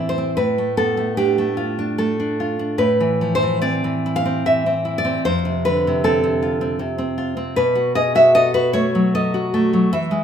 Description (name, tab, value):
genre	romantic piece for solo classical guitar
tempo	76 BPM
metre	3/4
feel	rubato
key	unclear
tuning	A4 = 440 Hz
part	nylon-string guitar	solo	0.0-10.2 s	F2 to F5	-16 LUFS	equal	none
room	moderate recital hall reverb, RT60 1.4 s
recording	minimal, uncompressed stereo recording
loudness	-16 LUFS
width	side -8 dB against mid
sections	0.0-10.2 A section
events	none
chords	0.4 Dm/A; 2.8 Am; 5.2 F; 7.6 B7